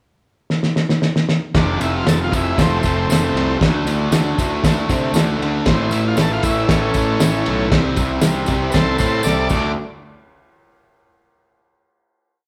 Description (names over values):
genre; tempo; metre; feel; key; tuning
garage rock duo or trio; 117 BPM; 4/4; straight; unclear; A4 = 441 Hz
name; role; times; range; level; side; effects
cloth-damped thuddy drum kit; drums; 0.5-9.6 s; crash cymbal, kick drum, ride cymbal, snare drum; -20 LUFS; equal; none
combo organ; melody; 1.6-9.7 s; A3 to D5; -24 LUFS; equal; none
fuzz guitar; riff; 1.6-9.7 s; F2 to D4; -24 LUFS; equal; distortion
fuzz picked electric bass; bass; 1.6-9.7 s; F1 to C3; -25 LUFS; equal; overdrive
tambourine; percussion; 1.6-9.7 s; none; -37 LUFS; equal; none
room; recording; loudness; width
moderate large studio reverb, RT60 1.1 s; band playing live in one room; -18 LUFS; mono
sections
0.0-1.5 pickup bar; 1.5-9.8 pre-chorus; 9.8-11.8 final hit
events
drum fill 0.5-1.5, 9.2-9.8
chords
0.0 N.C.; 1.5 F; 3.6 D5; 5.7 A; 7.7 C5; 9.5 D5; 9.8 N.C.